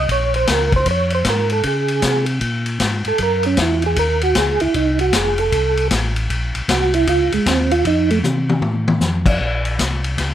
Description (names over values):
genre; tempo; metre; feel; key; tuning
soul jazz organ trio; 154 BPM; 4/4; swing 64% on 8ths; Bb minor; A4 = 440 Hz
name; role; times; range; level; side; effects
percussive tonewheel organ; melody; 0.0-8.2 s; Ab3 to Db5; -18 LUFS; right 3 dB; slow rotary speaker, chorus vibrato
mellow tonewheel organ; bass; 0.0-10.3 s; F1 to Db3; -21 LUFS; equal; overdrive, chorus vibrato, slow rotary speaker
vintage drum kit; drums; 0.1-10.3 s; crash cymbal, hi-hat, kick drum, ride cymbal, snare drum, toms; -20 LUFS; left 2 dB; none
room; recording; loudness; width
light reverb; close, detailed microphones; -15 LUFS; side -11 dB against mid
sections
0.0-9.4 A section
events
tonewheel organ solo 0.0-9.4; drum fill 8.2-9.0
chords
0.1 Bbm9; 3.2 Gb5; 4.7 F; 6.3 Bbmadd9; 7.8 F; 9.4 Bbmadd9